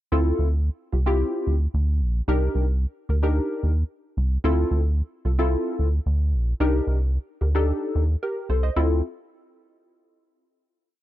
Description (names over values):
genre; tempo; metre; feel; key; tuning
early-eighties boogie funk; 111 BPM; 4/4; straight; D phrygian; A4 = 440 Hz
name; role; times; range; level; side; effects
funky polysynth comp; accompaniment; 0.1-9.0 s; C4 to Eb5; -25 LUFS; left 1 dB; chorus
rubbery square bass; bass; 0.1-9.0 s; Bb1 to Eb2; -21 LUFS; equal; none
room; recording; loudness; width
little or no reverb; dry, close 1970s-style studio recording; -21 LUFS; side -14 dB against mid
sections
0.1-8.8 verse; 8.8-10.9 final chord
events
none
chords
0.1 Dm9; 2.3 Cm9; 4.4 Dm9; 6.6 Cm9; 8.8 Dm9